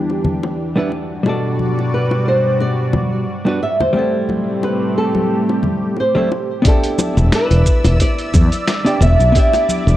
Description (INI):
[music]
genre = sunset chillout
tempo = 89 BPM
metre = 4/4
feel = swing 55% on 16ths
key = E minor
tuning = A4 = 439 Hz
[part]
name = flamenco guitar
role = melody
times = 0.0-10.0 s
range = G4 to E5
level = -20 LUFS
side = right 1 dB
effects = ping-pong delay
[part]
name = hollow-body jazz guitar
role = accompaniment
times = 0.0-10.0 s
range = B2 to D5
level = -20 LUFS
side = equal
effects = auto-pan, ping-pong delay
[part]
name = lush unison pad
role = sustained chords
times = 0.0-10.0 s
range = E3 to E6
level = -23 LUFS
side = equal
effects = chorus, phaser
[part]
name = bongos and congas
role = percussion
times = 0.1-9.8 s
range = none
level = -23 LUFS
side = left 3 dB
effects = none
[part]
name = dusty soul sampler-style drum kit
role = drums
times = 6.7-10.0 s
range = cabasa, hi-hat, snare drum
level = -23 LUFS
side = right 1 dB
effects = studio reverb
[part]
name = electronic kick drum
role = drums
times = 6.7-9.5 s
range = none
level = -14 LUFS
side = equal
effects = studio reverb
[part]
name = fretless electric bass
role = bass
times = 7.2-10.0 s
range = E1 to E2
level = -12 LUFS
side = equal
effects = none
[sound]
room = moderate plate reverb, RT60 2.4 s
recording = worn, warbling old tape, cassette tape, warbly pitch drift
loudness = -14 LUFS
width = side -14 dB against mid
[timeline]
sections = 0.0-6.7 A section; 6.7-10.0 B section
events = none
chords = 0.0 Em7; 0.9 Gmaj7; 4.0 Am7; 6.7 Em7